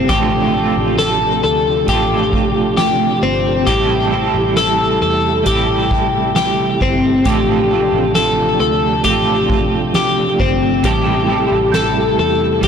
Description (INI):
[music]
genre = dream pop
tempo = 67 BPM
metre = 4/4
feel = straight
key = unclear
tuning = A4 = 439 Hz
[part]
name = electric guitar at the edge of break-up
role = accompaniment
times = 0.0-12.7 s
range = A2 to A4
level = -20 LUFS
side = right 7 dB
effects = tremolo, analog chorus
[part]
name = mellow tonewheel organ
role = sustained chords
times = 0.0-12.7 s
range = C3 to G4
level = -21 LUFS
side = right 4 dB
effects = chorus vibrato, fast rotary speaker
[part]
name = twelve-string electric guitar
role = arpeggios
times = 0.0-12.7 s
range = C4 to A4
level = -15 LUFS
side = left 4 dB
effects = lush chorus, tape echo
[part]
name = vintage muted fingered electric bass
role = bass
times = 0.0-12.7 s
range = G1 to E2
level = -23 LUFS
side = right 1 dB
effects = transformer saturation
[part]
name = soft-mallet drum kit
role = drums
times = 0.1-12.7 s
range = hi-hat, kick drum, snare drum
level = -22 LUFS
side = right 1 dB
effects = none
[part]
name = worn celesta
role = texture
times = 11.7-12.7 s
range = G6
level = -28 LUFS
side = right 4 dB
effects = tape echo
[sound]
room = light reverb, small room ambience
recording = blown-out, overdriven recording, overdrive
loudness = -12 LUFS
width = side -7 dB against mid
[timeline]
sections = 0.0-12.7 A section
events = none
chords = 0.1 G9sus4/A; 3.7 Am7; 7.3 G9sus4/A; 10.8 Am7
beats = | 0.10 0.99 1.89 2.78 | 3.68 4.57 5.47 6.36 | 7.26 8.15 9.05 9.95 | 10.84 11.74 12.63